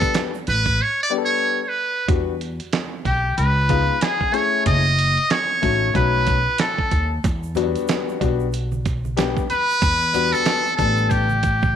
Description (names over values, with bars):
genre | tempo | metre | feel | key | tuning
hip hop, jazz-hop | 93 BPM | 4/4 | swing 60% on 16ths | E dorian | A4 = 439 Hz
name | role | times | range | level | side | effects
trumpet with metal mute | melody | 0.0-11.8 s | G4 to D#5 | -20 LUFS | right 2 dB | none
warm upright piano | accompaniment | 0.0-11.3 s | F#3 to A4 | -24 LUFS | left 11 dB | none
dusty soul sampler-style drum kit | drums | 0.0-11.8 s | hi-hat, kick drum, snare drum | -23 LUFS | right 3 dB | none
congas and egg shaker | percussion | 0.0-0.8, 7.2-11.7 s | none | -37 LUFS | right 6 dB | none
upright bass | bass | 0.5-11.7 s | F#1 to E2 | -22 LUFS | equal | none
vibraphone with hard mallets | second line | 3.0-11.8 s | G5 to D#6 | -26 LUFS | left 8 dB | none
room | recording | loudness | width
light reverb | 1960s-style stereo with parts hard left and right | -18 LUFS | side -9 dB against mid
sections
0.0-2.1 A section; 2.1-11.8 B section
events
muted trumpet solo 0.0-2.1; drums muted 0.8-2.1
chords
0.0 Em7 (rootless); 2.1 Em7; 3.4 C#7; 4.7 F#m; 6.0 B7; 7.2 Em7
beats
0.15 0.79 1.44 | 2.08 2.73 3.37 4.02 | 4.66 5.31 5.95 6.60 | 7.24 7.89 8.53 9.18 | 9.82 10.47 11.12